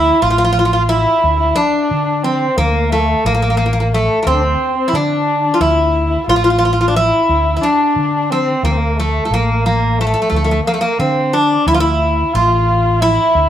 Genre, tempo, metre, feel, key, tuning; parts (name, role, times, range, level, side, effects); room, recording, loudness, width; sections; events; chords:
turkish; 178 BPM (eighths); 9/8; straight; D makam nihavent; A4 = 440 Hz
Greek bouzouki; melody; 0.0-13.5 s; A3 to F4; -15 LUFS; right 1 dB
dark kamancheh; second line; 0.0-13.5 s; A3 to F4; -19 LUFS; left 2 dB
fretless electric bass; bass; 0.0-13.5 s; A1 to D3; -18 LUFS; equal
wet studio reverb, RT60 0.9 s; band playing live in one room; -12 LUFS; side -10 dB against mid
0.0-13.5 A section